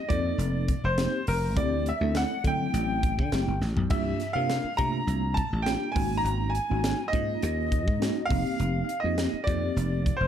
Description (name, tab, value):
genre	electric jazz fusion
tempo	102 BPM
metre	4/4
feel	swing 53% on 16ths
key	unclear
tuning	A4 = 440 Hz
part	bright grand piano	melody	0.0-10.3 s	Bb4 to Bb5	-31 LUFS	right 1 dB	tape echo
part	breathy jazz flute	second line	0.0-10.3 s	Bb4 to Bb5	-36 LUFS	left 4 dB	none
part	mellow tine electric piano	accompaniment	0.1-10.1 s	F#3 to Bb4	-32 LUFS	right 1 dB	medium stereo tremolo
part	dry thumbed slap bass	bass	0.1-10.3 s	F1 to D3	-28 LUFS	equal	none
part	crisp fusion drum kit	drums	0.1-10.2 s	crash cymbal, hi-hat, kick drum, snare drum, toms	-30 LUFS	equal	none
room	moderate studio reverb, RT60 0.8 s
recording	dark, warm production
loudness	-24 LUFS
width	side -9 dB against mid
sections	0.0-10.3 A section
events	drum fill 3.6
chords	0.0 F9sus4; 1.6 D9sus4; 3.9 C9sus4; 6.0 Ab9sus4; 8.3 F9sus4